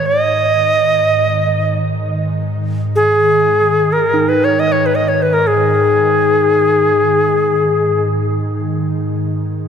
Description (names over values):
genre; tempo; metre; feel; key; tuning
world meditative, free-time meditation music; free time; none; none; unclear; A4 = 440 Hz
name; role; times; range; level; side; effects
bright reedy Native American-style cedar flute; melody; 0.0-8.0 s; G#4 to D#5; -13 LUFS; left 1 dB; tape echo
ethereal airy pad; drone; 0.0-9.7 s; G#2 to D#3; -19 LUFS; equal; ensemble chorus, built-in reverb
bronze singing bowl; texture; 4.1-9.7 s; D#4; -22 LUFS; right 6 dB; none
room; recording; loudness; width
wet cathedral reverb, RT60 5.1 s; none; -12 LUFS; side -7 dB against mid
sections
0.0-9.7 A section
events
none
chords
none